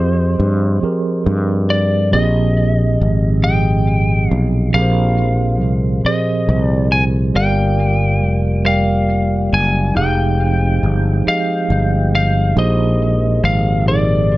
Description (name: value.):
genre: slow six-eight R&B.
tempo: 46 BPM (dotted quarters).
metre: 6/8.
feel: straight.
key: unclear.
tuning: A4 = 440 Hz.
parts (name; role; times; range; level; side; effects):
lightly driven lead guitar; melody; 0.0-14.4 s; C5 to Ab5; -20 LUFS; left 1 dB; none.
mellow tine electric piano; accompaniment; 0.0-14.4 s; Bb2 to G5; -19 LUFS; right 2 dB; medium stereo tremolo.
sustaining fretless electric bass; bass; 0.0-14.4 s; F1 to G2; -15 LUFS; equal; none.
mellow tonewheel organ; sustained chords; 7.3-14.4 s; F3 to G5; -26 LUFS; left 2 dB; overdrive, chorus vibrato, slow rotary speaker.
room: light reverb.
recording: none.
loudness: -13 LUFS.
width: side -18 dB against mid.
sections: 0.0-14.4 A section.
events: none.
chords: 0.0 Fm9; 2.1 Bb13sus4; 7.3 Gm7; 10.0 Fm9; 12.6 Bb13sus4.